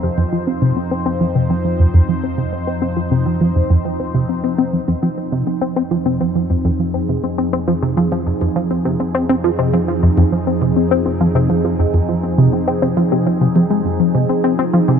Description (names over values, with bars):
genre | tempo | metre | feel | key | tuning
ambient, sequencer-driven space music | 102 BPM | 4/4 | straight | F minor | A4 = 440 Hz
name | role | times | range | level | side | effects
phased analog pad | sustained chords | 0.0-15.0 s | F3 to C5 | -21 LUFS | right 1 dB | phaser, chorus
tight sequenced synth | riff | 0.0-15.0 s | F2 to C4 | -16 LUFS | equal | chorus, phaser, tape echo
analog drone | bass | 0.0-15.0 s | F2 | -25 LUFS | equal | chorus
room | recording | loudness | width
moderate huge ambient reverb, RT60 7.6 s | none | -14 LUFS | side -7 dB against mid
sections
0.0-15.0 A section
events
fade-in on analog synth pad 0.0-15.0; filter sweep on synth arpeggio sound 0.0-15.0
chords
0.0 Fm7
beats
| 0.03 0.62 1.21 1.79 | 2.38 2.97 3.56 4.15 | 4.74 5.32 5.91 6.50 | 7.09 7.68 8.26 8.85 | 9.44 10.03 10.62 11.21 | 11.79 12.38 12.97 13.56 | 14.15 14.73